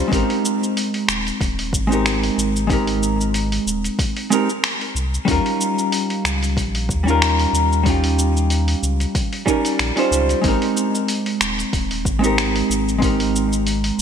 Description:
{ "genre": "sunset chillout", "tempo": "93 BPM", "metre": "4/4", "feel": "swing 55% on 16ths", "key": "Ab major", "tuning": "A4 = 440 Hz", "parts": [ { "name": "vintage hollow-body jazz guitar", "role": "accompaniment", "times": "0.0-14.0 s", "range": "G3 to C5", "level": "-20 LUFS", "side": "right 1 dB", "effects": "auto-pan, vintage 12-bit sampler grit, ping-pong delay" }, { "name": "warm sub bass", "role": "bass", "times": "0.0-14.0 s", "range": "Eb1 to Eb2", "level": "-22 LUFS", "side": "equal", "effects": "none" }, { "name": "dusty soul sampler-style drum kit", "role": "drums", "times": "0.1-14.0 s", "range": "finger snaps, hi-hat, shaker", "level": "-24 LUFS", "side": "equal", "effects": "small room reverb, gated reverb" }, { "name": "electronic kick drum", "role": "drums", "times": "0.1-13.2 s", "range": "none", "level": "-22 LUFS", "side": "equal", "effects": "small room reverb" } ], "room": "moderate lush hall reverb, RT60 2.8 s", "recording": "bright 1980s-style digital production", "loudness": "-17 LUFS", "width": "side -8 dB against mid", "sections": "0.0-14.0 A section", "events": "none", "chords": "0.1 Abmaj7; 5.3 Eb7; 10.4 Abmaj7" }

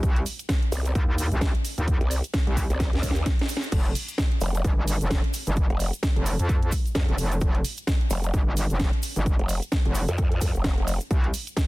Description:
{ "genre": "bass house", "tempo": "130 BPM", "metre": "4/4", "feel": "swing 57% on 16ths", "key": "unclear", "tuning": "A4 = 441 Hz", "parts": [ { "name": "metallic wobble bass", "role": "bass", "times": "0.0-11.3 s", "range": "F1 to F2", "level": "-25 LUFS", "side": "equal", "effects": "distortion, chorus, overdrive, sidechain pumping" }, { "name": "electronic kick drum", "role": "drums", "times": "0.0-11.7 s", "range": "none", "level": "-24 LUFS", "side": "equal", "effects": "overdrive" }, { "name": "house drum kit", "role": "drums", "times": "0.0-11.7 s", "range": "crash cymbal, hi-hat, snare drum", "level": "-31 LUFS", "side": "right 1 dB", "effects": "overdrive" }, { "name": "cabasa", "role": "percussion", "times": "0.0-11.7 s", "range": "none", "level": "-40 LUFS", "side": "left 2 dB", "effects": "none" }, { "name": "growl bass", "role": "bass", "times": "0.7-11.0 s", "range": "F1 to F2", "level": "-25 LUFS", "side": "equal", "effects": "chorus, tube saturation, sidechain pumping" } ], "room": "little or no reverb", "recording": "dense, heavily limited modern master", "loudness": "-22 LUFS", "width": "side -20 dB against mid", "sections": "0.0-11.7 A section", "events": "drum fill 2.8-3.7", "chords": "0.0 Cm; 3.7 Fsus2; 11.1 N.C." }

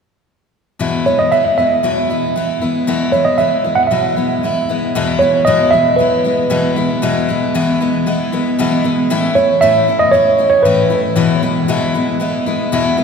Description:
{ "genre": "country", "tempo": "116 BPM", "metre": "4/4", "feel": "straight", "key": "E major", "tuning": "A4 = 441 Hz", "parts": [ { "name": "picked steel-string acoustic guitar", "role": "accompaniment", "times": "0.8-13.0 s", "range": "E2 to E4", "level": "-15 LUFS", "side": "left 2 dB", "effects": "none" }, { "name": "tine electric piano", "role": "melody", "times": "1.1-11.0 s", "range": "B4 to F#5", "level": "-14 LUFS", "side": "right 2 dB", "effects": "none" } ], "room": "wet church reverb, RT60 3.8 s", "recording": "recorded in a church or concert hall", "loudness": "-12 LUFS", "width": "side -6 dB against mid", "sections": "0.8-5.0 A section; 5.0-13.0 B section", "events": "none", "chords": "0.8 E; 9.1 A; 11.2 E" }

